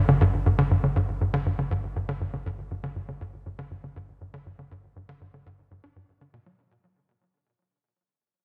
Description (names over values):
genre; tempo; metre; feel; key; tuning
ambient, sequencer-driven space music; 120 BPM; 4/4; straight; unclear; A4 = 442 Hz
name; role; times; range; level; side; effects
tight sequencer bass; riff; 0.0-6.6 s; G2 to D4; -26 LUFS; equal; subtle chorus, tape echo
warm sub bass; bass; 0.0-6.6 s; G1; -38 LUFS; equal; none
room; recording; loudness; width
wet echo chamber reverb, RT60 2.3 s; echo-heavy mix; -26 LUFS; mono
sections
0.0-6.6 A section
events
fade-out on sub bass 0.0-6.6; fade-out 0.0-6.6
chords
0.0 G5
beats
0.09 | 0.59 1.09 1.59 2.09 | 2.59 3.09 3.59 4.09 | 4.59 5.09 5.59 6.09